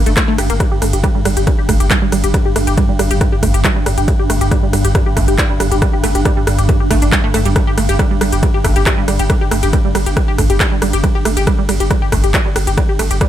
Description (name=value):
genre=driving peak-time techno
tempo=138 BPM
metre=4/4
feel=straight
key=unclear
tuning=A4 = 440 Hz
part: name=saturated sub bass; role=bass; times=0.0-13.2 s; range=G1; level=-17 LUFS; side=equal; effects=overdrive, sidechain pumping, low-pass filter
part: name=swarming drone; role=drone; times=0.0-13.3 s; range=G2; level=-21 LUFS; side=right 1 dB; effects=built-in reverb, sidechain pumping
part: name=tight sequenced synth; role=riff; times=0.1-13.3 s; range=G3 to G4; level=-19 LUFS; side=right 1 dB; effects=chorus, sidechain pumping, dub echo
part: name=techno drum kit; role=drums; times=0.1-13.3 s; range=handclaps, hi-hat, ride cymbal, rim click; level=-20 LUFS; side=equal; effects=studio reverb
part: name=electronic kick drum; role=drums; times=0.2-13.3 s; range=none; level=-15 LUFS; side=equal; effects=studio reverb
room=light reverb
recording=none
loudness=-12 LUFS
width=side -11 dB against mid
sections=0.0-13.3 A section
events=none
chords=0.0 G5